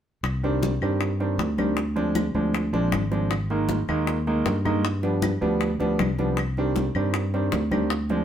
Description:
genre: Afro-Cuban jazz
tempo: 157 BPM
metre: 4/4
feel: straight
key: C minor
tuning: A4 = 438 Hz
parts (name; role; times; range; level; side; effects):
- fingered electric bass; bass; 0.2-8.2 s; Ab1 to G2; -26 LUFS; equal; none
- bongos; percussion; 0.2-8.2 s; none; -30 LUFS; left 3 dB; none
- claves; percussion; 0.2-7.9 s; none; -38 LUFS; left 3 dB; none
- congas; percussion; 0.2-8.2 s; none; -32 LUFS; left 5 dB; none
- clear concert grand piano; accompaniment; 0.4-8.2 s; Eb3 to Eb4; -25 LUFS; right 2 dB; none
room: moderate studio reverb, RT60 0.7 s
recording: band playing live in one room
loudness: -22 LUFS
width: side -9 dB against mid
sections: 0.2-8.2 A section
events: none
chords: 0.2 Cmadd9; 1.8 Dm7b5; 3.3 Absus2; 4.8 G7; 6.4 Cmadd9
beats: | 0.24 0.63 1.01 1.39 | 1.78 2.16 2.54 2.93 | 3.31 3.69 4.08 4.46 | 4.84 5.23 5.61 5.99 | 6.38 6.76 7.14 7.52 | 7.91

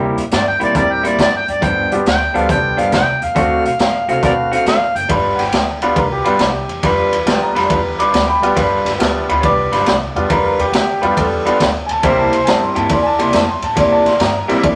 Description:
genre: electric blues shuffle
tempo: 138 BPM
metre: 4/4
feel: swing 68% on 8ths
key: G mixolydian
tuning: A4 = 441 Hz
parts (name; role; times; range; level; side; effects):
- bright grand piano; accompaniment; 0.0-14.6 s; G3 to D6; -21 LUFS; equal; none
- electric guitar through a small old amp; riff; 0.0-14.7 s; G2 to B4; -21 LUFS; equal; none
- upright bass; bass; 0.0-14.8 s; F#1 to C3; -29 LUFS; equal; none
- raw garage drum kit; drums; 0.2-14.8 s; hi-hat, kick drum, ride cymbal, snare drum; -21 LUFS; equal; none
- mellow harmonica; melody; 0.3-5.1 s; Bb4 to G5; -19 LUFS; equal; overdrive
- mellow saxophone section; stabs; 5.1-14.8 s; E4 to D5; -21 LUFS; equal; none
room: moderate club ambience, RT60 0.5 s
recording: none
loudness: -15 LUFS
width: mono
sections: 0.0-5.1 A section; 5.1-14.8 B section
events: none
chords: 0.0 C7; 1.6 G7; 3.4 D7; 5.1 G7; 12.0 C7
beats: 0.32 0.75 1.18 | 1.62 2.05 2.49 2.92 | 3.36 3.79 4.22 4.66 | 5.09 5.53 5.96 6.40 | 6.83 7.26 7.70 8.13 | 8.57 9.00 9.44 9.87 | 10.30 10.74 11.17 11.60 | 12.04 12.47 12.90 13.34 | 13.77 14.20 14.64

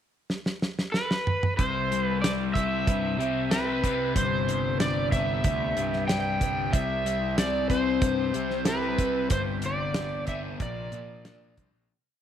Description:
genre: psychedelic rock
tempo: 93 BPM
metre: 4/4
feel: straight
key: C major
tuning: A4 = 441 Hz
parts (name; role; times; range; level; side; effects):
- damped 70s drum kit; drums; 0.3-11.7 s; hi-hat, kick drum, snare drum, toms; -27 LUFS; right 1 dB; none
- overdriven slide guitar; melody; 0.9-11.5 s; B4 to G5; -29 LUFS; right 1 dB; slapback echo
- combo organ; sustained chords; 1.6-11.9 s; F3 to B5; -38 LUFS; right 12 dB; none
- overdriven semi-hollow guitar; riff; 1.6-11.9 s; G2 to G4; -31 LUFS; left 11 dB; phaser
- fuzz picked electric bass; bass; 1.6-11.9 s; G1 to C3; -32 LUFS; right 1 dB; overdrive
- analog drone; drone; 2.9-12.0 s; C2 to C3; -37 LUFS; right 1 dB; chorus
room: light reverb, small room ambience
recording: 1960s-style stereo with parts hard left and right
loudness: -24 LUFS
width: side -9 dB against mid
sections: 0.0-1.6 pickup bar; 1.6-11.9 groove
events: drum fill 0.3-1.6; fade-out 9.3-11.9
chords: 0.0 N.C.; 1.6 C; 4.2 G; 6.7 C; 9.3 G; 10.6 Bb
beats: 0.30 0.94 | 1.59 2.23 2.88 3.52 | 4.16 4.81 5.45 6.09 | 6.74 7.38 8.02 8.67 | 9.31 9.96 10.61 11.26

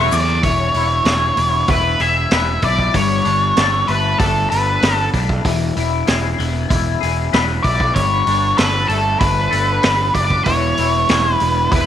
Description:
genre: psychedelic rock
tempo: 96 BPM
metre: 4/4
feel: straight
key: unclear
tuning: A4 = 440 Hz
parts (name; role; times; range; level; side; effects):
- octave-fuzz lead guitar; melody; 0.0-11.9 s; A4 to E5; -17 LUFS; equal; wah, distortion, slapback echo
- mellow tonewheel organ; sustained chords; 0.0-0.4, 10.4-11.9 s; C#3 to B4; -26 LUFS; right 14 dB; slow rotary speaker
- twangy electric guitar; riff; 0.0-11.9 s; E3 to C#5; -22 LUFS; left 14 dB; rotary speaker
- fuzz picked electric bass; bass; 0.0-11.9 s; E1 to E2; -20 LUFS; right 2 dB; overdrive
- vintage drum kit; drums; 0.1-11.9 s; hi-hat, kick drum, snare drum; -20 LUFS; right 1 dB; none
room: light reverb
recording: 1960s-style stereo with parts hard left and right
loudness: -14 LUFS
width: side -10 dB against mid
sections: 0.4-11.9 A section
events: none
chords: 0.4 E; 2.9 Gadd9; 5.4 E; 8.0 Gadd9; 10.5 E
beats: | 0.43 1.06 1.68 2.31 | 2.94 3.56 4.19 4.82 | 5.45 6.07 6.70 7.33 | 7.95 8.58 9.21 9.84 | 10.46 11.09 11.72

